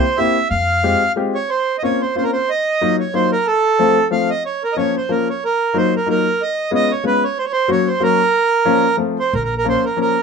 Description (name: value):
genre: musette waltz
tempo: 184 BPM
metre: 3/4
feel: swing 55% on 8ths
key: Bb harmonic minor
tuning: A4 = 439 Hz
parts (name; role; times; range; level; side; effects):
- accordion; melody; 0.0-10.2 s; A4 to F5; -16 LUFS; right 4 dB; none
- clear upright piano; accompaniment; 0.0-10.1 s; F3 to G4; -18 LUFS; left 6 dB; none
- upright bass; bass; 0.5-0.9, 9.3-9.8 s; Bb1 to F2; -21 LUFS; equal; none
room: moderate small room reverb, RT60 0.5 s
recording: minimal, uncompressed stereo recording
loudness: -15 LUFS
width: side -5 dB against mid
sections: 0.0-1.5 A section; 1.5-10.2 B section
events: none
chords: 0.0 C7; 0.5 Fmadd9; 1.5 Bbmadd9; 2.5 Ebmadd9; 3.5 F; 4.4 Bbm; 5.4 Ebmadd9; 6.4 Db7; 7.4 Gb; 8.3 Bbm; 9.0 F; 9.3 Bbm